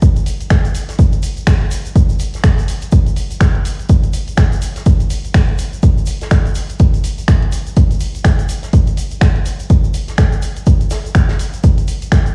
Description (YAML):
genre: house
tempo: 124 BPM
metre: 4/4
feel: swing 59% on 16ths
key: none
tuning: none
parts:
  - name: electronic kick drum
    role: drums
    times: 0.0-12.2 s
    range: none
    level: -15 LUFS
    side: equal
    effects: none
  - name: punchy analog drum machine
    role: drums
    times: 0.0-12.3 s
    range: finger snaps, hi-hat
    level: -27 LUFS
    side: equal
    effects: none
  - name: unplugged drum kit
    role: drums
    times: 0.0-12.3 s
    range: hi-hat, snare drum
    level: -34 LUFS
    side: equal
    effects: high-pass filter on hats, high-pass filter on snare, high-pass filter on room
  - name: egg shaker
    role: percussion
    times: 0.0-12.3 s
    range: none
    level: -37 LUFS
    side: equal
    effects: none
room: studio reverb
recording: played on a big sound system in a bare room, cassette tape, stone room reverb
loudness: -15 LUFS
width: mono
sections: 0.0-12.3 A section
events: none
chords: none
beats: | 0.02 0.51 0.99 1.47 | 1.96 2.44 2.92 3.41 | 3.89 4.38 4.86 5.34 | 5.83 6.31 6.80 7.28 | 7.76 8.25 8.73 9.22 | 9.70 10.18 10.67 11.15 | 11.63 12.12